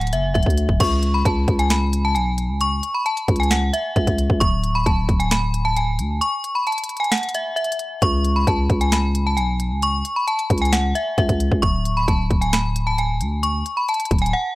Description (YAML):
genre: hip hop, trap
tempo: 133 BPM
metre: 4/4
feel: half-time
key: unclear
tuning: A4 = 438 Hz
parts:
  - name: metallic FM bell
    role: melody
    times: 0.0-14.5 s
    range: E5 to C#6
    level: -22 LUFS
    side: equal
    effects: chorus
  - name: growling 808-style bass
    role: bass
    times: 0.0-14.3 s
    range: D1 to D2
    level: -20 LUFS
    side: equal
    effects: none
  - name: trap drum kit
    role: drums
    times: 0.0-14.3 s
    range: crash cymbal, finger snaps, hi-hat, kick drum, snare drum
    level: -22 LUFS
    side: equal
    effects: none
room: little or no reverb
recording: dry, gritty hardware recording, transformer saturation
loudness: -18 LUFS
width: side -19 dB against mid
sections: 0.8-14.6 A section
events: break 6.2-8.0, 14.3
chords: 0.0 D; 0.8 N.C.; 4.4 D5; 8.0 N.C.; 11.6 Dmaj7(no3)